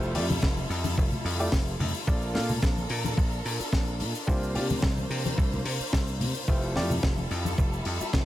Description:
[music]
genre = nu-disco, nu disco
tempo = 109 BPM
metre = 4/4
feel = swing 53% on 16ths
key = F major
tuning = A4 = 440 Hz
[part]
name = clear grand piano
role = accompaniment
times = 0.0-6.9 s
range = A3 to F5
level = -34 LUFS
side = equal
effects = sidechain pumping, dub echo
[part]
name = dark symphonic violin section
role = sustained chords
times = 0.0-8.2 s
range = G3 to C5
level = -36 LUFS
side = equal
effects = sidechain pumping
[part]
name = dry thumbed slap bass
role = bass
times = 0.0-8.2 s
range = F1 to C3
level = -30 LUFS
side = equal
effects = none
[part]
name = cabasa, congas and bongos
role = percussion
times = 0.0-8.2 s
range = none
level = -34 LUFS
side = left 2 dB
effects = none
[part]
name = tight funk drum kit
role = drums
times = 0.1-8.2 s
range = hi-hat, snare drum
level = -33 LUFS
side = left 2 dB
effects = none
[part]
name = electronic kick drum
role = drums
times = 0.4-8.2 s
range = none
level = -26 LUFS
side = equal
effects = none
[sound]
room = little or no reverb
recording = none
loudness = -25 LUFS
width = side -14 dB against mid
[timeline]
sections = 0.0-8.2 A section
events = none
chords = 0.0 Fmaj9; 2.1 Bbmaj7; 4.3 C9sus4; 6.5 Fmaj9

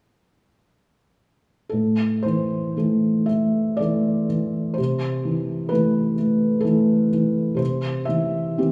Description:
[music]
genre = classical, romantic nocturne for solo piano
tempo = 57-65 BPM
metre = 3/4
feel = rubato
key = A minor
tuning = A4 = 440 Hz
[part]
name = felt-muted upright piano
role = solo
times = 1.7-8.7 s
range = A2 to E5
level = -22 LUFS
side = equal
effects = none
[sound]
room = wet concert hall reverb, RT60 2.3 s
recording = studio ambience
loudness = -22 LUFS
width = mono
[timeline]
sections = 1.7-8.7 A section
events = none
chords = 1.7 Am; 4.8 Am/C; 7.6 C

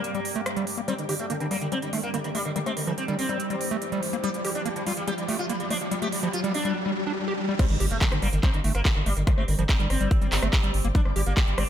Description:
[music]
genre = psychedelic trance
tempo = 143 BPM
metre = 4/4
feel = straight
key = G minor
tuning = A4 = 441 Hz
[part]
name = sitar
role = melody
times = 0.0-11.6 s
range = D3 to G4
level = -31 LUFS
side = equal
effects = phaser, sidechain pumping, digital delay
[part]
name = overdriven acid bass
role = riff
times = 0.0-11.6 s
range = F3 to G4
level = -30 LUFS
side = moving between left 3 dB and right 4 dB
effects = auto-pan, sidechain pumping, digital delay
[part]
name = big-room dance drum kit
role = drums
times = 0.0-11.7 s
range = crash cymbal, handclaps, hi-hat, rim click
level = -31 LUFS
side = right 2 dB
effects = overdrive, high-pass filter on snare, high-pass filter on hats, high-pass filter on cymbals, high-pass filter on room
[part]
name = riser and impact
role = sound effects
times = 0.0-9.3 s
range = none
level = -34 LUFS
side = equal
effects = none
[part]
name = granular cloud pad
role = texture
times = 0.0-11.7 s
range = G3 to D6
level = -36 LUFS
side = equal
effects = built-in reverb, sidechain pumping
[part]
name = electronic kick drum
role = drums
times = 7.6-11.5 s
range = none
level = -21 LUFS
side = equal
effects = overdrive
[part]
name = round analog bass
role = bass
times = 7.7-11.6 s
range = G1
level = -26 LUFS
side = equal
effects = none
[sound]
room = light reverb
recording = none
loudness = -23 LUFS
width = side -10 dB against mid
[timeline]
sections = 0.0-7.6 A section; 7.6-11.7 B section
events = build-up 0.0-7.6; riser 0.0-7.6; filter sweep on acid bass 0.0-7.6; drop 7.6-11.7; impact 7.6-9.3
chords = 0.0 G5

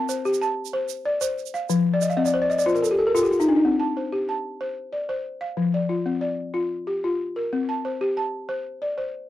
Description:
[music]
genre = west african traditional, West African string and xylophone music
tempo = 123 BPM (dotted quarters)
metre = 12/8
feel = straight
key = C dorian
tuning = A4 = 440 Hz
[part]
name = balafon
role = arpeggios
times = 0.0-9.3 s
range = F3 to A5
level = -22 LUFS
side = left 1 dB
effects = none
[part]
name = egg shaker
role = percussion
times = 0.1-3.5 s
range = none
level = -35 LUFS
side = right 19 dB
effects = none
[sound]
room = light reverb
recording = dry, close 1970s-style studio recording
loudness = -22 LUFS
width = side -13 dB against mid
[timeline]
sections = 0.0-3.6 A section; 3.6-9.3 B section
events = balafon fill 1.9-3.6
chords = 0.0 C5; 1.7 F5; 3.6 C5; 5.6 F5; 7.5 C5

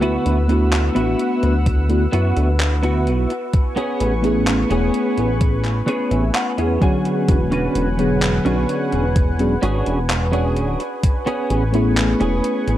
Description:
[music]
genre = vaporwave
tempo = 64 BPM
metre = 4/4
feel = straight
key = A major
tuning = A4 = 440 Hz
[part]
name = mellow FM electric piano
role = accompaniment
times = 0.0-12.8 s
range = D3 to C#5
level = -22 LUFS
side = left 1 dB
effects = analog chorus, dub echo
[part]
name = lush unison pad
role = sustained chords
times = 0.0-12.8 s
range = B4 to E6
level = -27 LUFS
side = equal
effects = chorus, vintage 12-bit sampler grit
[part]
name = clean electric guitar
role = riff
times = 0.0-12.8 s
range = B3 to G#5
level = -23 LUFS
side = right 1 dB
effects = ensemble chorus, vintage 12-bit sampler grit, dub echo
[part]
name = chorused synth bass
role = bass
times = 0.0-12.8 s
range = D1 to F#2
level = -19 LUFS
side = equal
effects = none
[part]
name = gated 80s digital drum machine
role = drums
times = 0.0-12.8 s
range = handclaps, hi-hat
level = -26 LUFS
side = equal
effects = gated reverb, overdrive
[part]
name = electronic kick drum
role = drums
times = 1.7-11.2 s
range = none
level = -18 LUFS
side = equal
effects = overdrive
[sound]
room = digital ambience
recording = echo-heavy mix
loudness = -16 LUFS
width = side -13 dB against mid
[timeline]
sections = 0.0-12.8 A section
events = clean electric guitar fill 5.4-7.3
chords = 0.0 D69; 3.5 Amaj9; 6.8 E13; 11.0 Amaj9

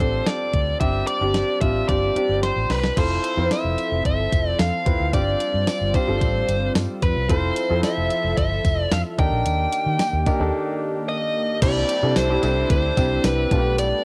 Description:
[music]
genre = 1980s-style pop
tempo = 111 BPM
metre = 4/4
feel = straight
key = C major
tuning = A4 = 436 Hz
[part]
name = biting lead guitar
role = melody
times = 0.0-14.0 s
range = B4 to G5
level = -26 LUFS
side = equal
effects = overdrive
[part]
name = clear baby grand piano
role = accompaniment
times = 0.0-14.0 s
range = G3 to C5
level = -28 LUFS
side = equal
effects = cassette tape, plate reverb
[part]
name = vintage muted fingered electric bass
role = bass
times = 0.0-13.9 s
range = F1 to Eb3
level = -27 LUFS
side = equal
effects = none
[part]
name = clean 12-bit digital drum machine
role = drums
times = 0.0-13.9 s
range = crash cymbal, hi-hat, kick drum, snare drum, tambourine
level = -26 LUFS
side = equal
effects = cassette tape
[part]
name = lush unison pad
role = sustained chords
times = 3.6-14.0 s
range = Eb3 to E5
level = -33 LUFS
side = equal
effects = chorus, cassette tape, plate reverb
[part]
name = tambourine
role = percussion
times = 3.0-13.9 s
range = none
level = -47 LUFS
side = equal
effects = none
[sound]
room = moderate small room reverb, RT60 0.5 s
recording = home recording on cassette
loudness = -21 LUFS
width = mono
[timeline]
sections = 0.0-3.0 A section; 3.0-11.6 B section; 11.6-14.0 C section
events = drum fill 2.4-3.0; break 10.5-11.6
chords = 0.0 Gsus4; 3.0 Fmaj7; 5.1 G7sus4; 7.3 Fmaj7; 9.2 Ebmaj7; 11.6 Cadd9; 13.5 Gadd9/B

